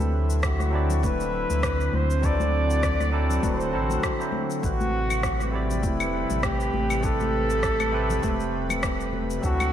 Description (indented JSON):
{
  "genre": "sunset chillout",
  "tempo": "100 BPM",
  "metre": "4/4",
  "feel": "swing 57% on 16ths",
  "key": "A dorian",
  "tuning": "A4 = 441 Hz",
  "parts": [
    { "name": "barky tine electric piano", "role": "accompaniment", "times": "0.0-9.7 s", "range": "F#3 to D5", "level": "-31 LUFS", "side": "equal", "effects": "overdrive, auto-pan, analog delay" },
    { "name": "airy breathy pad", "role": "sustained chords", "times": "0.0-9.7 s", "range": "C3 to B4", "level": "-31 LUFS", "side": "right 1 dB", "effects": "chorus" },
    { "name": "warm sub bass", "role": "bass", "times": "0.0-9.7 s", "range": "D1 to D2", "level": "-26 LUFS", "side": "equal", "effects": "none" },
    { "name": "electronic shaker, rim click and claves", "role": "drums", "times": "0.0-9.7 s", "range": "none", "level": "-32 LUFS", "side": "left 1 dB", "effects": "none" },
    { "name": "congas", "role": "percussion", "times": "0.0-9.7 s", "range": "none", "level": "-35 LUFS", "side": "left 5 dB", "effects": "none" },
    { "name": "mellow flugelhorn", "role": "melody", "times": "0.4-9.7 s", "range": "E4 to D5", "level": "-28 LUFS", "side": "equal", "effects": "analog delay" },
    { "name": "electronic kick drum", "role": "drums", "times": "0.4-9.6 s", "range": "none", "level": "-29 LUFS", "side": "equal", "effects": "none" }
  ],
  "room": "moderate lush hall reverb, RT60 1.8 s, digital ambience",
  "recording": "dreamy mix soaked in reverb",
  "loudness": "-22 LUFS",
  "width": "side -10 dB against mid",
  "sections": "0.0-9.7 A section",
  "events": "none",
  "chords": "0.0 D9; 4.6 Am9"
}